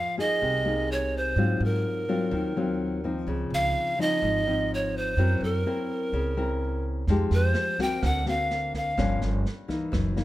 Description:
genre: bossa nova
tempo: 126 BPM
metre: 4/4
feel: straight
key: F minor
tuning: A4 = 439 Hz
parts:
  - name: breathy bright pan flute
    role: melody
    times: 0.0-9.2 s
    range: Bb4 to G5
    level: -28 LUFS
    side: right 1 dB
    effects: none
  - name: nylon-string guitar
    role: accompaniment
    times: 0.0-10.2 s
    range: Gb2 to Bb4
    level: -29 LUFS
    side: left 3 dB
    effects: none
  - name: upright bass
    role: bass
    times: 0.4-10.2 s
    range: Gb1 to Ab2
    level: -28 LUFS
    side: right 1 dB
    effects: none
  - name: open jazz drum kit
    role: drums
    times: 7.1-10.2 s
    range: kick drum, rim click, snare drum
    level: -33 LUFS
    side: right 1 dB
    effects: none
room: moderate large studio reverb, RT60 1.4 s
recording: none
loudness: -24 LUFS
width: side -15 dB against mid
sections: 0.0-10.2 A section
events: none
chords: 0.0 Fm7; 1.4 Ab13; 3.3 Dbmaj9; 5.2 Gb7#11; 7.1 Fm9; 8.0 D7alt; 9.0 Gm7b5

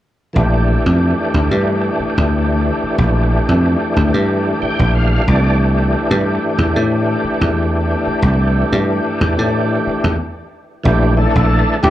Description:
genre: electric jazz fusion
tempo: 92 BPM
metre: 4/4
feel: swing 54% on 16ths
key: Bb lydian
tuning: A4 = 441 Hz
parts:
  - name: overdriven tonewheel organ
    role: accompaniment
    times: 0.3-11.9 s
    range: E3 to G5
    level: -17 LUFS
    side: equal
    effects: slow rotary speaker, chorus vibrato, slapback echo
  - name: dry thumbed slap bass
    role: bass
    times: 0.4-11.9 s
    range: Bb1 to A2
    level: -15 LUFS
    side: equal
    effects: none
  - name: breathy trumpet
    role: melody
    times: 11.8-11.9 s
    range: G4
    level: -12 LUFS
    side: equal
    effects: none
room: light reverb, small room reverb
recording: live gig heard through the venue's PA, club ambience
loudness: -13 LUFS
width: side -13 dB against mid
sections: 0.4-10.9 A section; 10.9-11.9 B section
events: tonewheel organ fill 4.3-5.6; stop 10.2-10.9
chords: 0.4 Bbmaj7; 5.3 Cadd9; 10.9 Bbmaj7

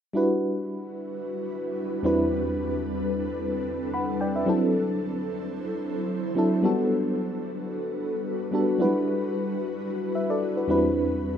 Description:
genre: amapiano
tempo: 111 BPM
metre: 4/4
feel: swing 55% on 16ths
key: unclear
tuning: A4 = 441 Hz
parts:
  - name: mellow FM electric piano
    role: accompaniment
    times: 0.1-11.4 s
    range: E2 to B5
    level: -25 LUFS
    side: equal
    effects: chorus, tremolo
  - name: ethereal airy pad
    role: sustained chords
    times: 0.7-11.4 s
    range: E2 to C5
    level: -30 LUFS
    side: equal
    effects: ensemble chorus, built-in reverb, tremolo
room: wet studio reverb, RT60 0.5 s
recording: rough home demo mix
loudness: -24 LUFS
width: side -8 dB against mid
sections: 0.1-11.4 A section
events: none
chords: 0.1 Em9; 2.0 Am11/E; 4.5 D9/F#; 6.6 Gmaj9; 8.8 Em9; 10.7 Am11/E

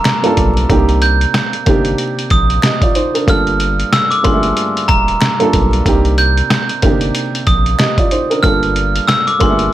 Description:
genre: hip hop, boom-bap hip-hop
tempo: 93 BPM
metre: 4/4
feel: swing 58% on 16ths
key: C minor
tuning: A4 = 440 Hz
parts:
  - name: glockenspiel with hard plastic mallets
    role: melody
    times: 0.0-9.7 s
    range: Bb5 to G6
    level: -17 LUFS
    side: right 2 dB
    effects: high-pass filter, low-pass filter, tape echo
  - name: dark upright piano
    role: accompaniment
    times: 0.0-9.7 s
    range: G2 to Eb5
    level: -16 LUFS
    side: right 2 dB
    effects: cassette tape, high-pass filter, low-pass filter
  - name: finger snap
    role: percussion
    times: 0.0-9.3 s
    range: none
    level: -30 LUFS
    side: left 4 dB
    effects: none
  - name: trip hop sampler-style drum kit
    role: drums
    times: 0.1-9.7 s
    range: hi-hat, kick drum, snare drum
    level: -16 LUFS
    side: equal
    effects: none
  - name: soft dub sub bass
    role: bass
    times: 0.4-9.7 s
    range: Eb1 to C2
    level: -16 LUFS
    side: equal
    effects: none
room: little or no reverb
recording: vinyl crackle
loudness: -11 LUFS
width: side -13 dB against mid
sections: 0.0-9.7 A section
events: none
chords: 0.0 Gm9; 0.7 Cm9; 3.3 Gm9; 5.9 Cm9; 8.4 Gm9

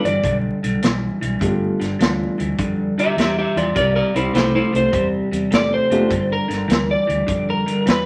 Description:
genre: electric blues shuffle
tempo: 102 BPM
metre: 4/4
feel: swing 67% on 8ths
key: G mixolydian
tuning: A4 = 439 Hz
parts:
  - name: electric slide guitar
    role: melody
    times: 0.0-8.1 s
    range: E4 to E5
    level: -22 LUFS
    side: equal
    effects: none
  - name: electric guitar through a small old amp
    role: riff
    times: 0.0-8.1 s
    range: G2 to A3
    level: -24 LUFS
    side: equal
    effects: none
  - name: vintage muted fingered electric bass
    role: bass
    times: 0.0-8.1 s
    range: F#1 to F2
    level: -30 LUFS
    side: equal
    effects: none
  - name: vintage drum kit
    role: drums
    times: 0.1-8.1 s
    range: hi-hat, kick drum, snare drum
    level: -24 LUFS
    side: equal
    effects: none
  - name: warm upright piano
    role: accompaniment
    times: 1.4-2.4, 5.9-6.1 s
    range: A3 to A4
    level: -25 LUFS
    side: equal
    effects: none
room: wet studio reverb, RT60 0.7 s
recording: vinyl crackle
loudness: -19 LUFS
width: mono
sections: 0.0-8.1 A section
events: electric slide guitar solo 0.0-8.1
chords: 0.0 G9; 3.8 Cadd9; 6.1 G7(no3)

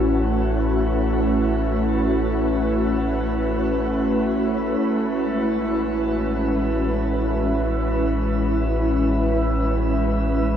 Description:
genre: ambient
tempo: free time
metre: none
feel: none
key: unclear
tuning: A4 = 440 Hz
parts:
  - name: ethereal airy pad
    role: sustained chords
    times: 0.0-10.6 s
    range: G#3 to B4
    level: -20 LUFS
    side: equal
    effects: ensemble chorus, built-in reverb
  - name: warm sub bass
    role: bass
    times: 0.0-10.6 s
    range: A1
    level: -25 LUFS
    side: equal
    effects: none
room: wet shimmer reverb, RT60 7.8 s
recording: none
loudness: -19 LUFS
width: side -9 dB against mid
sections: 0.0-10.6 A section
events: none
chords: 0.0 B9sus4/A

